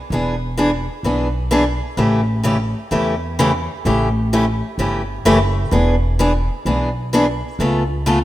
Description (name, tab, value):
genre	acoustic string swing (jazz manouche)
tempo	128 BPM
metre	4/4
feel	swing 65% on 8ths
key	unclear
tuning	A4 = 440 Hz
part	picked steel-string acoustic guitar	accompaniment	0.1-8.2 s	C#3 to A4	-18 LUFS	equal	none
part	upright bass	bass	0.1-8.2 s	E1 to E2	-20 LUFS	equal	none
room	light reverb, small room ambience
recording	rough home demo mix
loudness	-16 LUFS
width	side -14 dB against mid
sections	0.0-8.2 A section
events	none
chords	0.0 E7; 2.0 A7; 5.7 E7; 7.6 C#aug7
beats	| 0.11 0.57 1.04 1.51 | 1.98 2.45 2.92 3.38 | 3.85 4.32 4.79 5.26 | 5.72 6.19 6.66 7.13 | 7.59 8.06